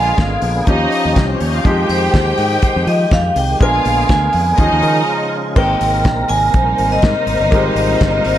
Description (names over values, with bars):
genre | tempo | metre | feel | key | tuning
disco | 122 BPM | 4/4 | swing 56% on 16ths | Ab major | A4 = 440 Hz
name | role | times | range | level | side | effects
vibraphone with hard mallets | melody | 0.0-8.4 s | C5 to Ab5 | -18 LUFS | equal | none
clear studio string section | second line | 0.0-8.4 s | G3 to G5 | -20 LUFS | equal | none
warm concert grand piano | accompaniment | 0.0-8.4 s | F3 to Bb4 | -22 LUFS | left 2 dB | none
tonewheel organ | sustained chords | 0.0-8.4 s | C3 to Bb4 | -23 LUFS | right 1 dB | overdrive, chorus vibrato, slow rotary speaker
fingered electric bass | bass | 0.0-8.4 s | G1 to F3 | -19 LUFS | equal | none
damped 70s drum kit | drums | 0.2-8.4 s | crash cymbal, hi-hat, kick drum, snare drum | -18 LUFS | equal | none
room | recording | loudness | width
light reverb, small room ambience | none | -12 LUFS | side -12 dB against mid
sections
0.0-5.6 A section; 5.6-8.4 B section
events
break 5.1-5.6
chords
0.0 Bb7b9; 0.7 Eb9; 1.6 Fm9; 3.6 Bb7b9; 4.6 Eb9sus4; 5.6 Abmaj9